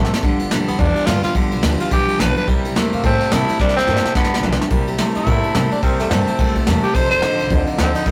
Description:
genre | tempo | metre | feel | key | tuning
rockabilly | 215 BPM | 4/4 | swing 59% on 8ths | C mixolydian | A4 = 440 Hz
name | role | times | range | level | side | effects
picked steel-string acoustic guitar | accompaniment | 0.0-8.1 s | G2 to A4 | -26 LUFS | equal | none
twangy electric guitar | riff | 0.0-8.1 s | F2 to A3 | -25 LUFS | equal | spring reverb
upright bass | bass | 0.0-8.1 s | F1 to C3 | -26 LUFS | equal | none
soft brush drum kit | drums | 0.0-8.1 s | kick drum, ride cymbal, snare drum | -22 LUFS | equal | none
growling tenor saxophone | melody | 0.7-8.1 s | A3 to C5 | -22 LUFS | equal | none
room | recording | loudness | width
light reverb | rough rehearsal-room recording, warm saturation | -17 LUFS | mono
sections
0.0-4.7 A section; 4.7-8.1 B section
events
drum fill 0.0, 3.6-4.7; tenor saxophone solo 4.7-8.1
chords
0.2 G7; 2.5 C7; 4.2 G7; 4.7 C7; 7.0 F7

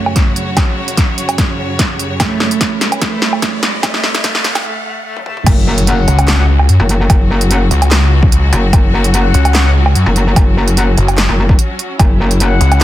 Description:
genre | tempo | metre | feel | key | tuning
heavy wobble dubstep | 147 BPM | 4/4 | swing 53% on 16ths, half-time | F# minor | A4 = 441 Hz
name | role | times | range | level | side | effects
rich cello | melody | 0.0-5.5 s | G#3 to A3 | -21 LUFS | right 4 dB | dub echo
clear studio string section | sustained chords | 0.0-12.8 s | F#2 to C#5 | -21 LUFS | left 1 dB | sidechain pumping
riser and impact | sound effects | 0.5-7.1 s | none | -26 LUFS | equal | none
big-room dance drum kit | drums | 0.1-12.8 s | crash cymbal, handclaps, hi-hat, snare drum, toms, woodblock | -16 LUFS | right 1 dB | none
electronic kick drum | drums | 0.2-12.1 s | none | -12 LUFS | equal | none
metallic wobble bass | bass | 5.5-12.6 s | F#1 | -12 LUFS | equal | chorus, overdrive
mellow brass ensemble | stabs | 5.9-12.8 s | C#4 to F#5 | -21 LUFS | left 5 dB | dub echo
snarling distorted saw bass | bass | 6.1-12.8 s | F#1 to F#2 | -10 LUFS | equal | distortion, overdrive
room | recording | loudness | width
little or no reverb | dense, heavily limited modern master, high-pass filter | -10 LUFS | side -14 dB against mid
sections
0.0-5.5 A section; 5.5-12.8 B section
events
build-up 0.0-5.5; drum fill 0.0-4.6, 5.2-5.5; filter sweep 0.0-5.5; riser 0.5-4.6; break 4.6-5.5; drop 5.5-12.8; impact 5.5-7.1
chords
0.0 F#m

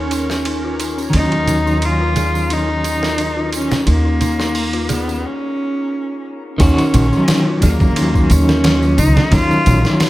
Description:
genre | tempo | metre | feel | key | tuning
trip hop | 88 BPM | 4/4 | swing 54% on 16ths | Eb minor | A4 = 440 Hz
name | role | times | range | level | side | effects
warm cello | melody | 0.0-10.0 s | Bb3 to F4 | -20 LUFS | equal | vintage 12-bit sampler grit, dub echo
electric guitar at the edge of break-up | accompaniment | 0.0-10.1 s | Eb3 to Gb4 | -20 LUFS | equal | tremolo, low-pass filter
dark detuned synth bell | arpeggios | 0.0-10.1 s | Db4 to Bb4 | -24 LUFS | left 4 dB | chorus, tape echo
upright bass | bass | 0.0-9.8 s | Bb1 to Eb2 | -18 LUFS | equal | none
backwards swelling texture | texture | 0.0-5.2 s | Db4 to Bb4 | -30 LUFS | right 3 dB | built-in reverb
trip hop sampler-style drum kit | drums | 0.1-10.1 s | hi-hat, kick drum, ride cymbal, snare drum | -21 LUFS | equal | high-pass filter on cymbals, high-pass filter on snare, high-pass filter on hats, high-pass filter on kick
tambourine and congas | percussion | 0.1-10.1 s | none | -26 LUFS | right 3 dB | none
room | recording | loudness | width
digital ambience | none | -13 LUFS | side -16 dB against mid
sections
0.0-6.6 A section; 6.6-10.1 B section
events
filter sweep on clean electric guitar 0.0-6.6; break 5.2-6.6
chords
0.0 Ebm7

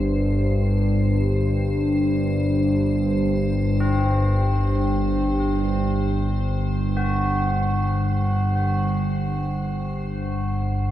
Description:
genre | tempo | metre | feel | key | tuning
dark ambient drone | free time | none | none | unclear | A4 = 440 Hz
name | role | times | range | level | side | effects
analog drone | drone | 0.0-10.9 s | G1 to G2 | -20 LUFS | equal | chorus
icy glass pad | texture | 0.0-10.9 s | C5 | -36 LUFS | right 1 dB | chorus, built-in reverb, shimmer reverb
tubular bells | arpeggios | 3.8-10.9 s | C4 to F#4 | -28 LUFS | equal | dub echo, shimmer reverb
room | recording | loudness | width
wet echo chamber reverb, RT60 2.0 s, studio reverb | echo-heavy mix, nothing above 10.6 kHz | -20 LUFS | side -12 dB against mid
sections
0.0-10.9 A section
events
fade-out on ambient pad 0.0-10.9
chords
0.0 C5/G

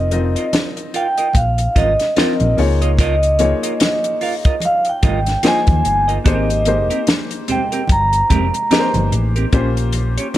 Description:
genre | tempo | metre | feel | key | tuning
lush 1970s-style soul | 73 BPM | 4/4 | swing 58% on 16ths | unclear | A4 = 440 Hz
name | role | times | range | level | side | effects
vibraphone with soft mallets | melody | 0.0-9.1 s | Eb5 to Bb5 | -18 LUFS | right 1 dB | none
warm concert grand piano | accompaniment | 0.0-10.4 s | Bb3 to Eb5 | -23 LUFS | left 4 dB | none
hollow-body short-scale fingered electric bass | bass | 0.0-10.2 s | F1 to Eb2 | -18 LUFS | equal | none
semi-hollow electric guitar | riff | 0.1-10.4 s | C4 to F5 | -24 LUFS | right 5 dB | none
compact cocktail drum kit | drums | 0.1-10.4 s | hi-hat, kick drum, snare drum | -18 LUFS | equal | none
congas | percussion | 0.1-10.4 s | none | -27 LUFS | right 3 dB | none
room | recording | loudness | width
small room ambience | none | -14 LUFS | side -14 dB against mid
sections
0.0-9.5 A section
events
none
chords
0.0 F7sus4; 2.6 Db69; 6.3 Abmaj9; 9.5 Bbm69

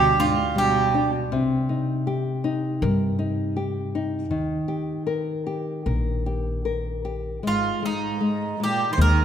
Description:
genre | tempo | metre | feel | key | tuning
fado-style ballad | 79 BPM | 4/4 | rubato | Eb major | A4 = 442 Hz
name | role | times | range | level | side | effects
Greek bouzouki | melody | 0.0-1.1, 7.5-9.2 s | Eb4 to C5 | -22 LUFS | right 4 dB | none
warm cello | second line | 0.0-1.1, 7.5-9.2 s | Ab2 to Eb3 | -28 LUFS | right 3 dB | none
nylon-string guitar | accompaniment | 0.0-9.2 s | C3 to Bb4 | -26 LUFS | left 3 dB | none
upright bass | bass | 0.0-9.2 s | Ab1 to G2 | -25 LUFS | equal | none
room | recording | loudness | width
wet concert hall reverb, RT60 2.3 s | minimal, uncompressed stereo recording | -22 LUFS | side -9 dB against mid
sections
0.0-9.2 A section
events
none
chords
0.0 G; 1.3 Cm7; 4.3 Eb; 7.4 Ab5

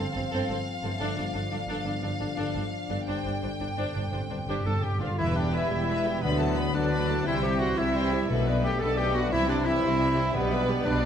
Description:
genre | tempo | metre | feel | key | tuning
cinematic | 116 BPM (dotted quarters) | 12/8 | straight | E minor from 5.2 s | A4 = 444 Hz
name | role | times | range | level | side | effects
warm symphonic violin section | melody | 0.0-11.0 s | B4 to B5 | -36 LUFS | left 4 dB | none
rich symphonic violin section | second line | 0.0-11.1 s | A4 to A5 | -37 LUFS | left 2 dB | none
rich symphonic viola section | accompaniment | 0.0-11.0 s | E3 to C5 | -35 LUFS | right 1 dB | none
warm French horn section | sustained chords | 0.0-11.1 s | D3 to F#4 | -35 LUFS | left 4 dB | none
concert harp | arpeggios | 0.0-11.1 s | G2 to E6 | -36 LUFS | left 7 dB | none
rich symphonic cello section | bass | 0.0-11.1 s | E2 to D3 | -33 LUFS | right 2 dB | none
rich symphonic double bass section | bass | 0.0-11.1 s | E1 to D2 | -33 LUFS | right 2 dB | none
timpani | percussion | 3.1-5.1, 8.3-10.8 s | G2 to B2 | -33 LUFS | equal | none
clear clarinet | second line | 4.5-11.1 s | B3 to A4 | -32 LUFS | equal | none
bright trumpet | stabs | 4.5-11.1 s | B3 to A4 | -33 LUFS | right 2 dB | none
warm trombone section | sustained chords | 5.2-11.1 s | F#2 to A3 | -38 LUFS | right 3 dB | none
mellow hollow silver concert flute | second line | 6.2-11.1 s | B4 to E5 | -38 LUFS | equal | none
room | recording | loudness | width
wet recital hall reverb, RT60 1.4 s | none | -25 LUFS | side -8 dB against mid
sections
0.0-5.2 A section; 5.2-11.1 B section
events
timpani fill 3.1-5.2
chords
0.0 F/G; 1.0 Dm/G; 5.2 Em; 6.2 Bm7/D; 7.3 C; 8.3 Bm7; 9.3 C; 10.3 G/B

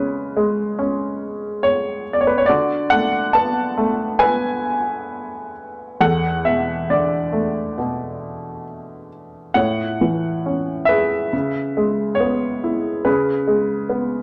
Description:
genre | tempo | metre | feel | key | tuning
classical, lyrical solo piano | 68 BPM | 4/4 | uneven beats, rubato | unclear | A4 = 440 Hz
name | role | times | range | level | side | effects
clear upright piano | solo | 0.0-14.2 s | E2 to A5 | -20 LUFS | equal | none
room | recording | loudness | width
moderate small room reverb, RT60 0.5 s | none | -20 LUFS | mono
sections
0.0-14.2 A section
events
none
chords
0.0 Bm69/C#; 2.5 D6; 6.0 E7sus4; 9.6 Amaj9; 11.3 C#m7; 13.1 G#madd11/C#

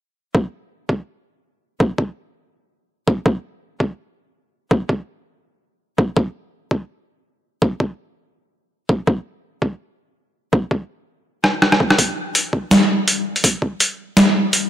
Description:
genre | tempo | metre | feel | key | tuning
half-time drum and bass | 165 BPM | 4/4 | swing 56% on 16ths, half-time | none | none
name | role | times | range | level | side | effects
electronic kick drum | drums | 0.3-13.7 s | none | -17 LUFS | equal | overdrive, high-pass filter on kick
boom bap sampler-style drum kit | drums | 11.4-14.6 s | hi-hat, rim click, snare drum | -14 LUFS | equal | overdrive
room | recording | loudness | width
moderate echo chamber reverb, RT60 2.0 s | none | -17 LUFS | side -11 dB against mid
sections
0.3-14.7 A section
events
drum fill 11.4-12.0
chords
none

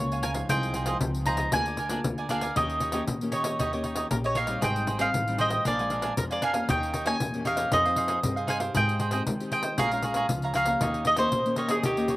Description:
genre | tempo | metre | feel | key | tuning
samba and choro | 116 BPM | 4/4 | straight | unclear | A4 = 440 Hz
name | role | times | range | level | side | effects
mandolin | melody | 0.0-12.2 s | G4 to Bb5 | -27 LUFS | equal | slapback echo
nylon-string guitar | accompaniment | 0.0-12.2 s | F2 to Ab4 | -34 LUFS | left 2 dB | none
upright bass | bass | 0.0-12.2 s | Ab1 to Ab3 | -33 LUFS | equal | none
cavaquinho | accompaniment | 0.1-12.2 s | D4 to Bb5 | -31 LUFS | right 3 dB | slapback echo
pandeiro | percussion | 0.1-12.2 s | none | -32 LUFS | left 2 dB | none
room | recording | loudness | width
little or no reverb | recorded outdoors, with no room sound | -24 LUFS | side -18 dB against mid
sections
0.0-12.2 A section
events
none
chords
0.5 Fm7/C; 1.5 Bb7/D; 2.6 Eb7; 4.6 Abmaj7; 5.7 Bb7; 6.7 Eb7; 7.7 Fm7; 8.8 Abmaj7; 9.8 Bbm7; 10.8 Eb7

